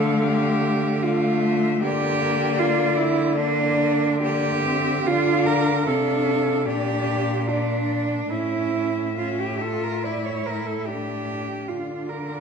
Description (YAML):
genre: classical, lyrical piece for cello ensemble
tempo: 73 BPM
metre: 4/4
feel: uneven beats, rubato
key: D minor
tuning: A4 = 440 Hz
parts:
  - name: warm cello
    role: melody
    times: 0.0-12.4 s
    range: D5 to F5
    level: -30 LUFS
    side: left 12 dB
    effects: none
  - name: rich cello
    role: second line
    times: 0.0-12.4 s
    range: D4 to D5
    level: -24 LUFS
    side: right 5 dB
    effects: none
  - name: rich cello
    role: accompaniment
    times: 0.0-12.4 s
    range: A3 to F4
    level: -27 LUFS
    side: left 4 dB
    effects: none
  - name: rich cello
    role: bass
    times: 0.0-12.4 s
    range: A2 to D3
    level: -26 LUFS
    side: equal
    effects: none
room: moderate recital hall reverb, RT60 1.4 s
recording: dark, warm production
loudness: -20 LUFS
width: side -6 dB against mid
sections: 0.0-12.4 A section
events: none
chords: 0.0 Dm; 1.8 Gm/D; 5.1 Dm; 6.7 Gm/Bb; 8.3 A; 11.7 Dm